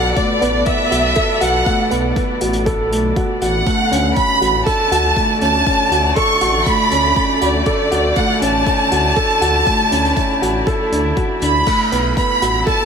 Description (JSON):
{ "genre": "piano and strings electronica", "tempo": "120 BPM", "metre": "4/4", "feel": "straight", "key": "unclear", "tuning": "A4 = 440 Hz", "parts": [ { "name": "rich chamber violin section", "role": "melody", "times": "0.0-12.8 s", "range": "D5 to C#6", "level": "-17 LUFS", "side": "right 1 dB", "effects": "shimmer reverb" }, { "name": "dark string quartet", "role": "sustained chords", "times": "0.0-12.8 s", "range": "B2 to D5", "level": "-24 LUFS", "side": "left 2 dB", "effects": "shimmer reverb" }, { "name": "felt-muted upright piano", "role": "riff", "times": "0.0-12.8 s", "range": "A3 to A4", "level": "-19 LUFS", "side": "right 1 dB", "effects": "ping-pong delay, shimmer reverb" }, { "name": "dark detuned saw bass", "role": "bass", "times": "0.0-12.6 s", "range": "A1 to D2", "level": "-21 LUFS", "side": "left 1 dB", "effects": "sidechain pumping" }, { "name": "electronic kick drum", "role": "drums", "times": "0.2-12.8 s", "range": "none", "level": "-21 LUFS", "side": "left 1 dB", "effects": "none" }, { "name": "vintage brush drum kit", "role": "drums", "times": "0.2-12.8 s", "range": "crash cymbal, hi-hat", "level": "-30 LUFS", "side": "left 1 dB", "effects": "none" } ], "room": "moderate recital hall reverb, RT60 1.5 s, small room ambience", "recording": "none", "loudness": "-13 LUFS", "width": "side -6 dB against mid", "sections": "0.0-12.8 A section", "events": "none", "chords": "0.0 Bm7; 3.7 Dmaj7; 11.7 Bm7" }